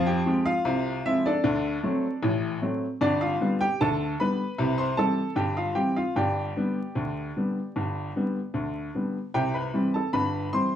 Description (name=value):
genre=ragtime piano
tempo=76 BPM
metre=2/4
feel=straight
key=C major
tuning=A4 = 440 Hz
part: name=clear upright piano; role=solo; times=0.0-10.8 s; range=G1 to C6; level=-24 LUFS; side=equal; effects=none
room=wet small room reverb, RT60 0.5 s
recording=heard from further back in the room, vinyl crackle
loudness=-24 LUFS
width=side -10 dB against mid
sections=0.0-9.3 A section; 9.3-10.8 B section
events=none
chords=0.0 Fm; 1.4 D7; 3.0 G7; 4.6 C; 6.2 G; 9.3 C